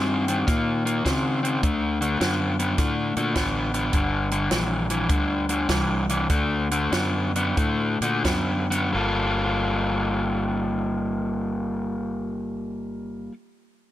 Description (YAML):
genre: electric blues shuffle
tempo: 83-104 BPM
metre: 4/4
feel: swing 67% on 8ths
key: G minor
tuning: A4 = 440 Hz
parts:
  - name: crunchy overdriven guitar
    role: riff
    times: 0.0-13.3 s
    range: G2 to A4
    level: -24 LUFS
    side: left 1 dB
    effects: none
  - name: fingered electric bass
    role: bass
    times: 0.0-13.3 s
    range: G1 to Db3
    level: -29 LUFS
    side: equal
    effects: none
  - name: compact cocktail drum kit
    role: drums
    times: 0.3-8.8 s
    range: hi-hat, kick drum, snare drum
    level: -27 LUFS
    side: equal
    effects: none
room: little or no reverb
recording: none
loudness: -22 LUFS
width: side -13 dB against mid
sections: 0.0-8.9 A section; 8.9-11.8 B section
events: slowing down 3.9-8.9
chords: 0.0 Eb7; 1.6 D; 3.9 Gm; 6.3 D; 8.9 Gm9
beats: 0.47 1.05 | 1.62 2.20 2.78 3.35 | 3.93 4.50 5.09 5.68 | 6.29 6.92 7.56 8.24 | 8.94 9.66 10.38 11.10